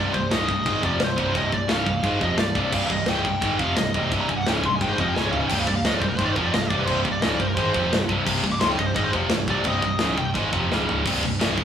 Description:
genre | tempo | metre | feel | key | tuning
heavy metal | 173 BPM | 4/4 | straight | C minor | A4 = 440 Hz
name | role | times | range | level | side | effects
high-gain lead guitar | melody | 0.0-10.3 s | Bb4 to D6 | -26 LUFS | equal | distortion
scooped high-gain guitar | riff | 0.0-11.6 s | C2 to Ab3 | -24 LUFS | equal | distortion
modern bright picked electric bass | bass | 0.0-11.6 s | C1 to Ab1 | -30 LUFS | equal | none
tight metal drum kit | drums | 0.1-11.6 s | china cymbal, crash cymbal, kick drum, snare drum, toms | -26 LUFS | equal | none
room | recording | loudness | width
light reverb | band playing live in one room, studio reverb | -20 LUFS | side -8 dB against mid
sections
0.0-11.1 A section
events
lead electric guitar solo 0.0-11.1; drum fill 5.2-5.5, 10.7-11.1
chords
0.0 Cm; 5.2 Db5; 5.5 Cm; 10.7 Db5; 11.1 C5

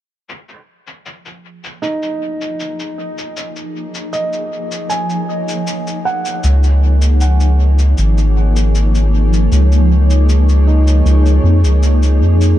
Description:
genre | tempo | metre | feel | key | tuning
ambient dub | 78 BPM | 4/4 | straight | unclear | A4 = 440 Hz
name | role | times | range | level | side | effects
granular cloud pad | sustained chords | 2.2-12.6 s | F3 to Db5 | -20 LUFS | equal | built-in reverb
cabasa | drums | 0.3-12.6 s | none | -29 LUFS | left 2 dB | low-pass filter on perc, low-pass filter on room, dub echo
felt-muted upright piano | arpeggios | 1.8-12.6 s | Eb4 to Ab5 | -23 LUFS | right 1 dB | low-pass filter, dub echo
round analog bass | bass | 6.4-12.5 s | Ab1 to F2 | -10 LUFS | equal | none
room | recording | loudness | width
little or no reverb | dark, warm production | -11 LUFS | side -13 dB against mid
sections
0.3-12.6 A section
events
fade-in on ambient pad 0.3-12.6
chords
0.3 Eb7(no3); 6.4 Db

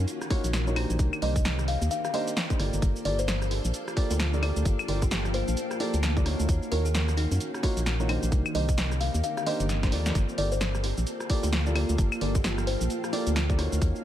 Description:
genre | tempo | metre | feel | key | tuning
UK garage, two-step garage | 131 BPM | 4/4 | swing 60% on 16ths | G minor | A4 = 437 Hz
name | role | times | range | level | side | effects
soft string machine | sustained chords | 0.0-14.0 s | Bb3 to F5 | -39 LUFS | equal | ensemble chorus, vintage 12-bit sampler grit, sidechain pumping
organ-like FM bass | bass | 0.0-13.9 s | G1 to Gb2 | -27 LUFS | equal | none
granular cloud pad | texture | 0.0-14.0 s | Eb3 to D6 | -37 LUFS | right 1 dB | built-in reverb, sidechain pumping
punchy analog drum machine | drums | 0.1-14.0 s | cabasa, claves, hi-hat, rim click, snare drum | -32 LUFS | equal | none
kalimba | melody | 0.3-13.1 s | Eb4 to F5 | -34 LUFS | left 1 dB | ping-pong delay
dark baby grand piano | stabs | 0.3-14.0 s | Bb3 to D5 | -33 LUFS | equal | none
electronic kick drum | drums | 0.3-13.9 s | none | -26 LUFS | equal | none
room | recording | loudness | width
little or no reverb | none | -24 LUFS | side -12 dB against mid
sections
0.0-14.0 A section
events
drum fill 9.7-10.2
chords
0.0 Ebm9; 1.0 Cm9; 2.8 Gm9; 6.5 Ebm9; 8.3 Cm9; 10.2 Gm9

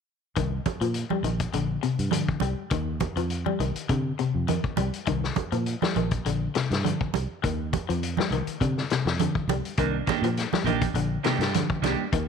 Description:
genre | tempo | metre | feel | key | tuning
afrobeat | 102 BPM | 4/4 | swing 53% on 16ths | C minor | A4 = 439 Hz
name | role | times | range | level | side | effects
electric guitar at the edge of break-up | arpeggios | 0.4-12.3 s | C3 to G3 | -29 LUFS | left 8 dB | wide subtle chorus
fingered electric bass | bass | 0.4-12.3 s | Bb1 to C3 | -28 LUFS | right 2 dB | none
vintage drum kit | drums | 0.4-12.3 s | hi-hat, kick drum, snare drum | -30 LUFS | left 4 dB | none
congas | percussion | 0.4-12.3 s | none | -30 LUFS | right 15 dB | none
clean electric guitar | stabs | 9.8-12.0 s | Eb3 to G4 | -29 LUFS | right 15 dB | spring reverb
room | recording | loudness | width
light reverb, small room reverb | 1960s-style stereo with parts hard left and right | -24 LUFS | side -6 dB against mid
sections
0.4-12.3 A section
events
none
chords
0.4 Cm9

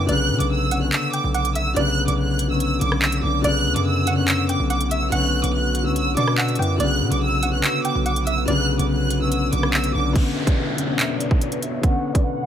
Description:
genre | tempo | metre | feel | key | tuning
hip hop, drill | 143 BPM | 4/4 | half-time | B minor | A4 = 436 Hz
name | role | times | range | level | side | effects
warm studio violin section | melody | 0.0-12.5 s | D5 to F#6 | -25 LUFS | right 3 dB | low-pass filter
string-like resonator pluck | second line | 0.0-9.7 s | D5 to G5 | -29 LUFS | right 2 dB | chorus, tape echo
dark grand piano | accompaniment | 0.0-12.5 s | C#3 to E4 | -24 LUFS | left 4 dB | low-pass filter
hard-hitting 808-style bass | bass | 0.0-10.1 s | B1 to B2 | -23 LUFS | right 1 dB | none
drill drum kit | drums | 0.1-12.2 s | crash cymbal, handclaps, hi-hat, kick drum, rim click | -22 LUFS | right 1 dB | none
glassy FM pad | sustained chords | 3.9-12.5 s | B2 to F#5 | -30 LUFS | equal | ensemble chorus, built-in reverb, low-pass filter
downlifter | sound effects | 10.2-12.5 s | none | -29 LUFS | right 1 dB | none
room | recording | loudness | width
digital ambience | none | -18 LUFS | side -9 dB against mid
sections
0.0-10.2 A section; 10.2-12.5 B section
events
filter sweep 10.2-12.5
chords
0.0 Bmadd9

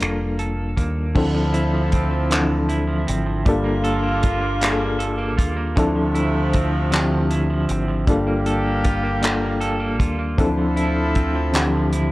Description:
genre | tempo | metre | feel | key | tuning
slow six-eight R&B | 52 BPM (dotted quarters) | 6/8 | straight | D minor | A4 = 439 Hz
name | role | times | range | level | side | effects
clean electric guitar | second line | 0.0-12.1 s | D3 to A4 | -25 LUFS | right 2 dB | tremolo, digital delay
reed electric piano | accompaniment | 0.0-12.1 s | E3 to A4 | -23 LUFS | left 2 dB | fast tremolo
deep dub picked electric bass | bass | 0.0-12.1 s | F1 to Eb2 | -24 LUFS | equal | transformer saturation
damped 70s drum kit | drums | 0.0-12.1 s | crash cymbal, finger snaps, handclaps, hi-hat, kick drum | -22 LUFS | equal | none
warm horn section | stabs | 1.2-12.1 s | C3 to A4 | -28 LUFS | equal | digital delay
room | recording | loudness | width
light reverb, small room ambience | worn, warbling old tape, cassette tape, warbly pitch drift | -18 LUFS | side -18 dB against mid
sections
0.0-1.2 A section; 1.2-12.1 B section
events
none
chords
0.0 Gm9; 1.2 Dm9; 3.5 Gm9; 5.8 Dm9; 8.1 Gm9; 10.4 Dm9

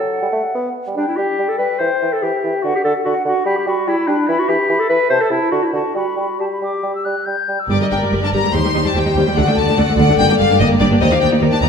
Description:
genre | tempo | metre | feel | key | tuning
quick classical-period movement for symphony orchestra | 145 BPM | 4/4 | rubato | G major, G minor from 7.7 s | A4 = 441 Hz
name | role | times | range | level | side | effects
concert flute | second line | 0.0-7.7 s | F#5 to G6 | -23 LUFS | left 1 dB | none
warm clarinet | second line | 0.0-7.3 s | D4 to C5 | -18 LUFS | left 1 dB | none
mellow bassoon | accompaniment | 0.0-7.6 s | C3 to B3 | -22 LUFS | right 2 dB | none
warm studio violin section | melody | 7.7-11.7 s | D5 to C6 | -19 LUFS | left 4 dB | none
warm studio violin section | second line | 7.7-11.7 s | F#4 to D5 | -22 LUFS | left 3 dB | none
rich studio viola section | accompaniment | 7.7-11.7 s | G3 to G4 | -18 LUFS | left 1 dB | none
clear studio double bass section | bass | 7.7-11.7 s | G1 to Eb2 | -20 LUFS | right 3 dB | none
warm studio cello section | bass | 7.7-11.7 s | D2 to G2 | -20 LUFS | right 4 dB | none
mellow French horn section | sustained chords | 8.5-11.7 s | Eb4 to C5 | -20 LUFS | left 7 dB | none
room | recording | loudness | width
wet recital hall reverb, RT60 1.6 s | none | -14 LUFS | side -6 dB against mid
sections
0.0-7.7 A section; 7.7-11.7 B section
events
none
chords
0.1 F#madd11; 1.0 N.C.; 1.8 Em; 2.6 D; 3.5 G; 4.3 E5; 5.1 Am/C; 5.5 D; 5.9 G; 7.7 Gm; 8.5 Cm/Eb; 9.4 D; 10.2 Gm; 11.0 Ebmaj7

